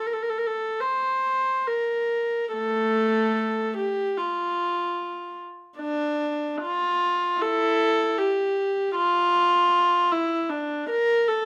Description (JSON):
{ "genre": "classical, free, expressive piece for unaccompanied viola", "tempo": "68-79 BPM", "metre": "4/4", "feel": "rubato", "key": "unclear", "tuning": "A4 = 442 Hz", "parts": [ { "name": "rich viola", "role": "solo", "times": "0.0-11.5 s", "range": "A3 to C5", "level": "-24 LUFS", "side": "equal", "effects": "none" } ], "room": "light reverb", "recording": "none", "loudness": "-24 LUFS", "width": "mono", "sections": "0.0-11.5 A section", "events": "none", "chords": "none", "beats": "0.82 1.67 | 2.51 3.35 4.17 4.97 | 5.78 6.60 7.40 8.17 | 8.95 9.74 10.51 11.28" }